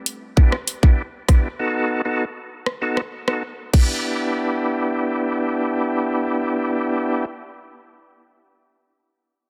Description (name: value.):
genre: dancehall.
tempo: 98 BPM.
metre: 4/4.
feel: straight.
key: E minor.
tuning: A4 = 437 Hz.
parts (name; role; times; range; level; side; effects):
island pop drum kit; drums; 0.1-3.9 s; crash cymbal, hi-hat, kick drum, rim click; -18 LUFS; equal; none.
percussive tonewheel organ; accompaniment; 0.4-7.3 s; B3 to A4; -24 LUFS; equal; overdrive, fast rotary speaker, sidechain pumping.
room: light reverb.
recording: dense, heavily limited modern master.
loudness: -21 LUFS.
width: mono.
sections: 0.0-4.0 A section; 4.0-6.5 B section.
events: silent gap 3.4-4.0.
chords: 0.0 Em7; 1.6 B7; 3.7 Em7.